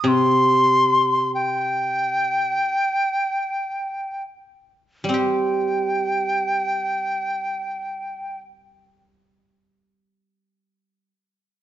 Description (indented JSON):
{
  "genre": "chinese traditional, Chinese chamber ensemble",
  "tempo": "free time",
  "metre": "none",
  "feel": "none",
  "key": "unclear",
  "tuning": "A4 = 439 Hz",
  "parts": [
    { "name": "reedy dizi", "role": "melody", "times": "0.0-8.4 s", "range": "G5 to C6", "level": "-20 LUFS", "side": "equal", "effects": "none" },
    { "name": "guzheng", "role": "accompaniment", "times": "0.0-11.1 s", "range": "C3 to G4", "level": "-22 LUFS", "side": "right 2 dB", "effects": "none" }
  ],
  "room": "moderate recital hall reverb, RT60 1.3 s",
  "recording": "nothing above 7.7 kHz",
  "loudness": "-19 LUFS",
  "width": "side -12 dB against mid",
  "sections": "0.0-5.2 A section; 5.2-9.0 B section",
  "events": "slowing down 1.4-5.2",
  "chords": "none"
}